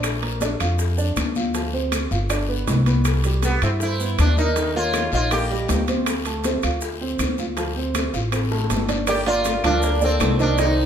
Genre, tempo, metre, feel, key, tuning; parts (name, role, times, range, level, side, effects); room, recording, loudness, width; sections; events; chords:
Afro-Cuban jazz; 159 BPM; 4/4; straight; D minor; A4 = 439 Hz
warm upright piano; accompaniment; 0.0-10.9 s; Eb3 to F5; -26 LUFS; right 3 dB
upright bass; bass; 0.0-10.9 s; G1 to G2; -23 LUFS; equal
bongos; percussion; 0.0-10.9 s; -31 LUFS; left 7 dB
claves; percussion; 0.0-10.4 s; -36 LUFS; left 6 dB
congas; percussion; 0.0-10.9 s; -30 LUFS; left 4 dB
guiro; percussion; 0.0-10.9 s; -35 LUFS; left 7 dB
maracas; percussion; 0.0-10.8 s; -37 LUFS; right 6 dB
timbales; percussion; 0.0-10.8 s; -30 LUFS; right 6 dB
sitar; melody; 3.4-5.8, 9.1-10.9 s; B3 to G4; -24 LUFS; right 1 dB
breathy mellow jazz flute; second line; 3.4-5.8, 9.1-10.9 s; G4 to Eb5; -28 LUFS; right 1 dB
moderate large studio reverb, RT60 1.2 s; minimal, uncompressed stereo recording; -19 LUFS; side -8 dB against mid
0.0-9.1 A section; 9.1-10.9 B section
drum fill 8.5-9.1
0.0 Bb; 1.5 Dm7; 2.3 G; 3.1 Cmaj7; 4.6 Eb9; 6.1 Dm7; 9.1 Gm9